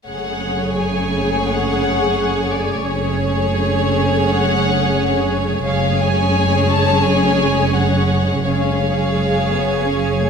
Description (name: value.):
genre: cinematic, suspense film score.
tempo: 86 BPM.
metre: 4/4.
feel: straight.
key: F# harmonic minor.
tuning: A4 = 440 Hz.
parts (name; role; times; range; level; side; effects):
warm chamber violin section; melody; 0.1-10.3 s; C#5 to A5; -23 LUFS; left 5 dB; none.
warm chamber violin section; second line; 0.1-10.3 s; G#4 to C#5; -23 LUFS; left 1 dB; none.
warm chamber viola section; accompaniment; 0.1-10.3 s; C#3 to C#4; -22 LUFS; right 1 dB; none.
soft additive organ-like pad; sustained chords; 0.5-10.3 s; G#4 to C#6; -24 LUFS; left 1 dB; ensemble chorus, built-in reverb.
dark chamber cello section; bass; 0.1-10.3 s; F#2; -22 LUFS; right 1 dB; none.
dark chamber double bass section; bass; 0.1-10.3 s; F#1; -23 LUFS; right 4 dB; none.
room: light reverb.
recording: close, detailed microphones.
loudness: -15 LUFS.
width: side -6 dB against mid.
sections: 0.1-10.3 A section.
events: none.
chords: 0.1 F#madd9; 5.7 C#/F#.